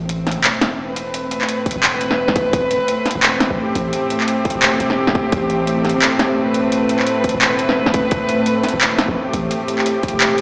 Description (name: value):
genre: half-time drum and bass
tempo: 172 BPM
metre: 4/4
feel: swing 57% on 16ths, half-time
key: A minor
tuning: A4 = 445 Hz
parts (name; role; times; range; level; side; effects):
- rich studio cello section; sustained chords; 0.0-10.4 s; A2 to B4; -17 LUFS; equal; sidechain pumping
- long sustained 808-style bass; bass; 0.0-10.4 s; E1 to A1; -27 LUFS; equal; none
- drum and bass drum kit; drums; 0.1-10.4 s; handclaps, hi-hat, snare drum; -17 LUFS; equal; none
- electronic kick drum; drums; 1.7-10.1 s; none; -20 LUFS; equal; none
room: light reverb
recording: played on a big sound system in a bare room, large studio reverb, small speaker sound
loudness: -15 LUFS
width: side -31 dB against mid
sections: 0.0-10.4 A section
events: none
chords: 0.0 Amadd9